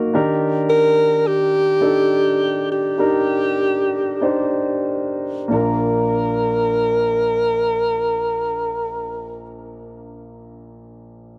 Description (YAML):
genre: pop ballad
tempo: 45-55 BPM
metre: 4/4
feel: straight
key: Bb major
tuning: A4 = 437 Hz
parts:
  - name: warm concert grand piano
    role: accompaniment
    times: 0.0-11.4 s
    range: Bb1 to C5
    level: -24 LUFS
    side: equal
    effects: none
  - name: warm alto saxophone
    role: melody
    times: 0.7-9.4 s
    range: G4 to Bb4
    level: -20 LUFS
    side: equal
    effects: none
room: moderate booth ambience, RT60 0.2 s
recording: dry, close 1970s-style studio recording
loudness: -19 LUFS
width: mono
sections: 0.0-5.5 A section; 5.5-10.9 B section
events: slowing down 0.0-5.5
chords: 0.1 Ebmaj7; 5.5 Bb